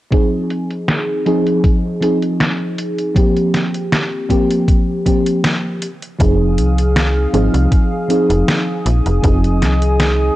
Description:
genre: vaporwave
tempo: 79 BPM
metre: 4/4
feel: swing 53% on 16ths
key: F minor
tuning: A4 = 442 Hz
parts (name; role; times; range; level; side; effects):
- mellow FM electric piano; accompaniment; 0.1-10.4 s; F3 to Ab4; -16 LUFS; equal; wide subtle chorus, analog delay
- detuned 8-bit digital drum machine; drums; 0.1-10.2 s; hi-hat, snare drum; -19 LUFS; equal; low-pass filter on hats, vintage 12-bit sampler grit, low-pass filter on snare
- electronic kick drum; drums; 0.1-9.4 s; none; -14 LUFS; equal; vintage 12-bit sampler grit
- lush unison pad; sustained chords; 6.2-10.4 s; Ab4 to Eb6; -24 LUFS; left 1 dB; chorus
- slap-like FM bass; bass; 6.2-10.3 s; F1 to C2; -15 LUFS; equal; transformer saturation
room: digital ambience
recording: dry, gritty hardware recording, cassette tape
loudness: -13 LUFS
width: side -16 dB against mid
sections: 0.1-10.4 A section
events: none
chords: 0.1 Ab6; 3.2 C7sus4; 5.8 Fm7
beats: | 0.12 0.89 1.64 2.40 | 3.16 3.92 4.68 5.44 | 6.20 6.96 7.72 8.48 | 9.24 10.00

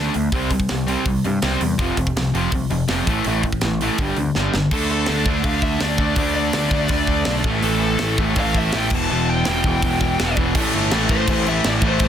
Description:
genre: punk rock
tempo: 164 BPM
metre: 4/4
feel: straight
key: A minor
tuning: A4 = 438 Hz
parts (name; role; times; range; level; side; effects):
- crunchy overdriven guitar; riff; 0.0-12.1 s; E2 to D4; -24 LUFS; right 13 dB; none
- distorted electric guitar; riff; 0.0-12.1 s; E2 to D4; -23 LUFS; left 7 dB; distortion
- growling picked electric bass; bass; 0.0-12.1 s; E1 to G2; -24 LUFS; equal; overdrive
- tight metal drum kit; drums; 0.1-12.1 s; crash cymbal, hi-hat, kick drum, snare drum; -23 LUFS; equal; none
- bluesy overdriven lead guitar; melody; 4.7-12.1 s; A4 to A5; -24 LUFS; left 2 dB; distortion
room: light reverb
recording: dense, heavily limited modern master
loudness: -17 LUFS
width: side -9 dB against mid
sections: 0.0-4.7 A section; 4.7-10.6 B section; 10.6-12.1 C section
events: drum fill 4.4-4.7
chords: 0.3 C5; 1.8 F5; 3.1 A5; 4.0 G5; 4.7 D5; 7.5 A5; 8.9 Em; 10.6 Am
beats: | 0.33 0.70 1.06 1.43 | 1.79 2.16 2.52 2.89 | 3.26 3.62 3.99 4.35 | 4.72 5.08 5.45 5.82 | 6.18 6.55 6.91 7.28 | 7.64 8.01 8.37 8.73 | 9.10 9.46 9.83 10.19 | 10.56 10.92 11.28 11.65 | 12.01

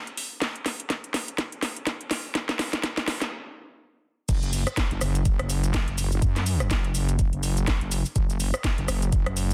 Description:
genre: bass house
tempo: 124 BPM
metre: 4/4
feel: swing 58% on 16ths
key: unclear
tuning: A4 = 440 Hz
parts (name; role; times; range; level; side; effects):
- garage drum kit; drums; 0.1-9.5 s; cabasa, crash cymbal, hi-hat, rim click, snare drum; -31 LUFS; equal; studio reverb
- electronic kick drum; drums; 0.4-9.2 s; none; -27 LUFS; equal; high-pass filter on kick, studio reverb
- wobble bass; bass; 4.3-9.5 s; F#1 to F#2; -28 LUFS; equal; chorus, overdrive, sidechain pumping
room: light reverb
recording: dense, heavily limited modern master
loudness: -26 LUFS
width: mono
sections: 0.0-4.3 A section; 4.3-9.5 B section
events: build-up 0.0-4.3; drum fill 0.0-3.3; stop 3.3-4.3; drop 4.3-9.5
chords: none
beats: | 0.42 0.90 1.38 1.87 | 2.35 2.83 3.32 3.80 | 4.29 4.77 5.25 5.74 | 6.22 6.71 7.19 7.67 | 8.16 8.64 9.13

